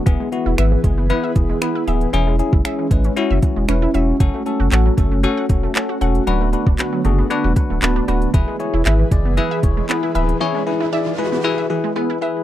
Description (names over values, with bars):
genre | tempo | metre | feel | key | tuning
dance-pop | 116 BPM | 4/4 | straight | unclear | A4 = 440 Hz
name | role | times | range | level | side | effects
airy breathy pad | sustained chords | 0.0-12.4 s | D3 to B4 | -25 LUFS | right 2 dB | chorus, sidechain pumping
downlifter and riser | sound effects | 0.0-0.1, 9.4-11.4 s | none | -30 LUFS | right 2 dB | none
bell-like tine electric piano | accompaniment | 0.1-12.4 s | B3 to B5 | -21 LUFS | left 6 dB | phaser, sidechain pumping
wide unison pluck | arpeggios | 0.1-12.3 s | E3 to F#5 | -26 LUFS | moving between right 2 dB and right 9 dB | auto-pan, sidechain pumping, tape echo
warm sub bass | bass | 0.1-10.3 s | D1 to A1 | -18 LUFS | equal | sidechain pumping
smooth R&B drum kit | drums | 0.1-10.4 s | finger snaps, handclaps, hi-hat, kick drum | -17 LUFS | equal | none
room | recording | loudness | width
little or no reverb | dry, close 1970s-style studio recording | -15 LUFS | side -12 dB against mid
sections
0.0-12.4 A section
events
tine electric piano fill 7.3-8.3, 10.9-12.4; riser 9.4-12.4; break 10.4-12.4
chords
0.1 E; 2.1 C#m/E; 4.2 F#m; 6.3 D6; 8.3 E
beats
| 0.07 0.58 1.10 1.62 | 2.13 2.65 3.17 3.69 | 4.20 4.72 5.24 5.75 | 6.27 6.79 7.31 7.82 | 8.34 8.86 9.38 9.89 | 10.41 10.93 11.44 11.96